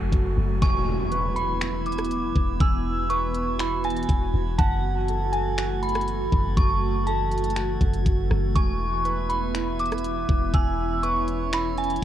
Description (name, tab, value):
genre	hip hop, atmospheric cloud-rap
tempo	121 BPM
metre	4/4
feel	half-time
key	unclear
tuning	A4 = 441 Hz
part	ethereal airy pad	sustained chords	0.0-12.0 s	E3 to F#4	-30 LUFS	equal	ensemble chorus, built-in reverb, cassette tape
part	concert harp	arpeggios	0.0-12.0 s	E4 to A5	-34 LUFS	right 10 dB	cassette tape, analog delay
part	warm 808-style bass	bass	0.0-12.0 s	E1 to F#1	-27 LUFS	equal	none
part	noise sweep and impact	sound effects	0.0-2.6 s	none	-34 LUFS	left 1 dB	none
part	drifting glass-harmonics texture	texture	0.0-12.0 s	E4 to G#6	-38 LUFS	right 2 dB	chorus, built-in reverb, cassette tape
part	trap drum kit	drums	0.1-12.0 s	finger snaps, hi-hat, kick drum, rim click	-24 LUFS	equal	cassette tape
part	dark detuned synth bell	melody	0.6-12.0 s	G#5 to E6	-28 LUFS	equal	chorus, phaser, cassette tape, analog delay
room	little or no reverb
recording	home recording on cassette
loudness	-22 LUFS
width	side -11 dB against mid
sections	0.6-12.0 A section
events	noise sweep 0.0-0.6; impact 0.6-2.6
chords	0.0 F#madd9; 0.6 E; 4.6 F#madd9; 8.6 E